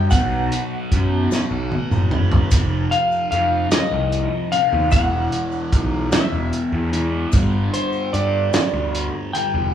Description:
psychedelic rock; 50 BPM (dotted quarters); 6/8; straight; A4 = 442 Hz
clean lap steel guitar; melody; 0.0-9.7 s; C5 to G5; -22 LUFS; left 2 dB
fuzz guitar; riff; 0.0-9.7 s; E2 to B3; -25 LUFS; right 1 dB; distortion, phaser
fuzz picked electric bass; bass; 0.0-9.7 s; E1 to G2; -22 LUFS; equal; overdrive
cloth-damped thuddy drum kit; drums; 0.1-9.5 s; hi-hat, kick drum, snare drum, toms; -20 LUFS; right 1 dB
maracas; percussion; 0.1-8.7 s; -39 LUFS; left 4 dB
moderate large studio reverb, RT60 1.2 s; band playing live in one room, small room ambience; -17 LUFS; side -10 dB against mid
0.0-9.7 A section
drum fill 1.3-2.5
0.1 B5; 2.5 F5; 4.9 E5; 7.3 G5

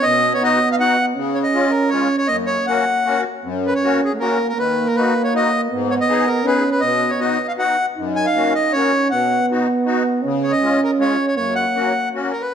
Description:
alpine folk, alpine dance band; 159 BPM; 3/4; rubato; F# major; A4 = 440 Hz
accordion; melody; 0.0-12.5 s; G#4 to G#5; -19 LUFS; equal
mellow euphonium; second line; 0.0-12.3 s; A3 to D#4; -20 LUFS; right 3 dB
musette accordion; accompaniment; 0.1-12.3 s; F#2 to G#4; -23 LUFS; left 5 dB
wet recital hall reverb, RT60 1.8 s; -16 LUFS; side -8 dB against mid
0.0-3.4 A section; 3.4-12.5 A section
0.0 B; 1.2 C#; 2.3 F#; 4.6 D#m; 5.7 G#m; 6.8 B; 8.0 F#; 9.1 B; 10.2 C#; 11.4 F#

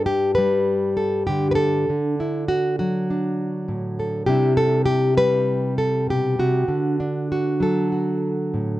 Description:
folk, solo fingerstyle acoustic guitar; 99 BPM; 4/4; rubato; A4 = 440 Hz
nylon-string guitar; solo; 0.0-8.8 s; G2 to B4; -19 LUFS; equal
light reverb; dark, warm production, nothing above 10.9 kHz; -19 LUFS; side -15 dB against mid
0.0-8.8 A section
0.0 G; 1.9 D; 4.3 Cadd9; 6.7 D

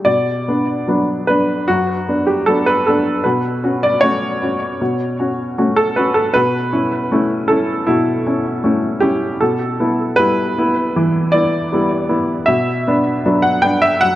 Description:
neoclassical minimalist piano; 78 BPM; 4/4; rubato; B minor; A4 = 439 Hz
clear upright piano; solo; 0.0-14.2 s; F#2 to G5; -14 LUFS; equal; tape echo
moderate spring reverb, RT60 2.5 s; cassette tape; -14 LUFS; side -14 dB against mid
0.1-14.2 A section
0.1 Bm; 3.2 F#m/B; 6.3 A/B; 9.4 Em/B; 12.5 Bm

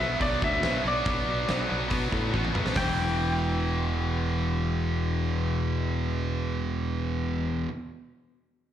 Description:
hard rock; 140 BPM; 4/4; straight; E minor; A4 = 440 Hz
lightly driven lead guitar; melody; 0.0-7.0 s; D5 to G5; -31 LUFS; equal; slapback echo, tape echo
distorted electric guitar; riff; 0.0-7.7 s; E2 to B3; -32 LUFS; left 10 dB; overdrive, slapback echo
high-gain distorted guitar; riff; 0.0-7.7 s; E2 to B3; -32 LUFS; right 7 dB; distortion, slapback echo
modern bright fingered electric bass; bass; 0.0-7.7 s; E1 to B2; -29 LUFS; equal
big rock drum kit; drums; 0.2-2.9 s; hi-hat, kick drum, snare drum, toms; -32 LUFS; equal
light reverb; live gig heard through the venue's PA, club reverb; -25 LUFS; side -10 dB against mid
0.0-2.8 A section; 2.8-6.2 B section
drum fill 2.3-2.8
0.0 Bm; 2.8 Em

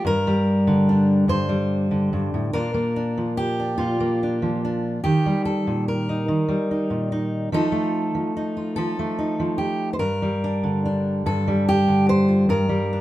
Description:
folk, solo fingerstyle acoustic guitar; 48 BPM (dotted quarters); 6/8; straight; G minor; A4 = 440 Hz
fingerpicked steel-string acoustic guitar; solo; 0.0-13.0 s; G2 to C5; -20 LUFS; equal
light reverb; minimal, uncompressed stereo recording; -20 LUFS; side -15 dB against mid
0.0-13.0 A section
0.0 Gm; 2.5 Bb; 5.0 Eb; 7.5 F7; 10.0 Gm

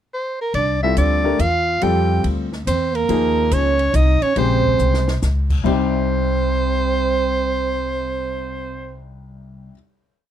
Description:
modal jazz; 140 BPM; 3/4; swing 66% on 8ths; C phrygian; A4 = 440 Hz
warm soprano saxophone; melody; 0.1-9.0 s; Bb4 to G5; -21 LUFS; right 1 dB
upright bass; bass; 0.5-9.7 s; Bb1 to F2; -21 LUFS; equal
compact cocktail drum kit; drums; 0.5-8.1 s; crash cymbal, cymbal swell, hi-hat, kick drum, ride cymbal, snare drum; -31 LUFS; equal
mellow trombone; second line; 0.6-9.0 s; Bb3 to G4; -24 LUFS; right 9 dB
warm baby grand piano; accompaniment; 0.8-9.7 s; C2 to C5; -23 LUFS; left 6 dB
little or no reverb; close, detailed microphones; -16 LUFS; side -10 dB against mid
0.0-0.5 pickup bar; 0.5-5.7 A section; 5.7-8.2 final chord
drum fill 4.8-5.2
0.0 N.C.; 0.5 Csus4; 3.1 Eb13sus4; 5.7 Cm

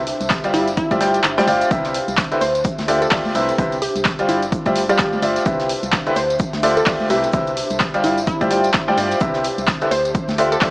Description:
piano house; 128 BPM; 4/4; swing 59% on 16ths; C major; A4 = 443 Hz
organ-like FM bass; bass; 0.0-10.7 s; G1 to G2; -32 LUFS; equal; sidechain pumping
airy breathy pad; texture; 0.0-10.7 s; D4 to F5; -27 LUFS; equal; chorus, sidechain pumping
crisp fusion drum kit; drums; 0.1-10.7 s; hi-hat, shaker, snare drum; -33 LUFS; equal
punchy analog drum machine; drums; 0.1-10.7 s; handclaps, hi-hat; -23 LUFS; equal; overdrive
tambourine and congas; percussion; 0.2-10.7 s; -30 LUFS; left 1 dB
electronic kick drum; drums; 0.3-10.7 s; -23 LUFS; equal; overdrive
clear upright piano; riff; 0.4-10.7 s; C3 to G5; -19 LUFS; equal; vintage 12-bit sampler grit, sidechain pumping, tape echo
glassy wavetable pluck; melody; 0.5-10.6 s; E4 to C5; -24 LUFS; equal; chorus, tape echo
moderate lush hall reverb, RT60 1.9 s; dreamy mix soaked in reverb, small speaker sound; -16 LUFS; side -24 dB against mid
0.0-10.7 A section
kick drops out 1.2-1.7
0.0 C; 0.5 G7sus4; 1.7 Cmaj7; 2.4 Dm11; 3.4 Cmaj7; 4.3 G7sus4; 5.5 Cmaj7; 6.2 Dm11; 7.1 Cmaj7; 8.0 G7sus4; 9.2 Cmaj7; 9.9 Dm11

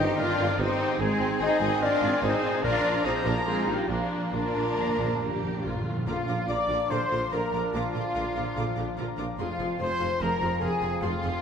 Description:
cinematic, heroic adventure film score; 145 BPM; 4/4; straight; Bb mixolydian; A4 = 440 Hz
warm symphonic violin section; melody; 0.0-11.4 s; Bb3 to D5; -38 LUFS; left 3 dB
clear clarinet; second line; 0.0-5.6 s; D4 to C5; -34 LUFS; equal
clear symphonic violin section; second line; 0.0-11.3 s; Bb3 to D6; -37 LUFS; left 2 dB
warm symphonic viola section; accompaniment; 0.0-11.3 s; D3 to Ab4; -36 LUFS; right 1 dB
bright trombone section; sustained chords; 0.0-11.4 s; Eb3 to D4; -37 LUFS; right 2 dB
warm French horn section; sustained chords; 0.0-11.4 s; F4 to Eb5; -30 LUFS; left 3 dB
concert harp; arpeggios; 0.0-11.4 s; F2 to Bb5; -38 LUFS; left 6 dB
clear trumpet section; stabs; 0.0-11.4 s; F4 to Bb5; -34 LUFS; right 1 dB
mellow tuba; bass; 0.0-11.3 s; F1 to Bb1; -36 LUFS; right 3 dB
rich symphonic double bass section; bass; 0.0-11.3 s; F1 to Bb1; -35 LUFS; right 3 dB
warm symphonic cello section; bass; 0.0-11.3 s; F2 to Eb4; -34 LUFS; right 1 dB
timpani; percussion; 2.6-6.7 s; Bb2; -36 LUFS; right 1 dB
hollow small flute group; second line; 6.1-11.4 s; F5 to D6; -34 LUFS; left 2 dB
wet scoring stage reverb, RT60 1.7 s; -24 LUFS; side -7 dB against mid
0.0-6.1 A section; 6.1-11.4 A section
timpani fill 4.3-6.1
0.0 Cm/G; 1.0 Ab; 2.6 Bb; 9.4 Fm

